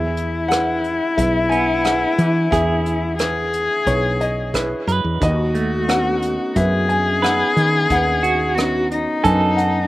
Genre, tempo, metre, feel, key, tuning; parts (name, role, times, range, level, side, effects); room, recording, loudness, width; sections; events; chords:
acoustic folk-pop ballad; 89 BPM; 4/4; straight; A4 = 440 Hz
dark upright piano; melody; 0.0-9.9 s; D#3 to G#5; -22 LUFS; equal
dark cello; second line; 0.0-9.9 s; D#4 to G#4; -20 LUFS; left 3 dB; slapback echo
semi-hollow electric guitar; arpeggios; 0.0-9.9 s; A3 to B4; -24 LUFS; right 4 dB; tremolo, slapback echo
woody fretless electric bass; bass; 0.0-9.9 s; B1 to E3; -22 LUFS; equal
soft brush drum kit; drums; 0.2-9.7 s; hi-hat, kick drum, rim click; -26 LUFS; right 1 dB
little or no reverb; -16 LUFS; side -16 dB against mid
0.0-9.9 A section
0.0 E; 5.2 Badd9/D#